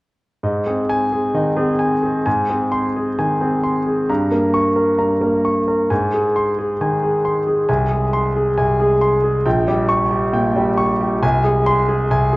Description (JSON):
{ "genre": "classical, virtuoso piano study", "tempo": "134 BPM", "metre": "4/4", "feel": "rubato", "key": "Ab major", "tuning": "A4 = 438 Hz", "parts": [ { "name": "clear concert grand piano", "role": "solo", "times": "0.4-12.4 s", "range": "Bb1 to Db6", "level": "-15 LUFS", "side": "equal", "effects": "none" } ], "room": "wet recital hall reverb, RT60 1.4 s", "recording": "worn, warbling old tape, cassette tape, warbly pitch drift", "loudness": "-15 LUFS", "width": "side -21 dB against mid", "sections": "0.4-2.3 A section; 2.3-12.4 B section", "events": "none", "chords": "0.4 Ab; 4.1 Gdim; 5.9 Ab; 7.7 Ab/C; 9.5 Bbm6; 11.2 Ab/C" }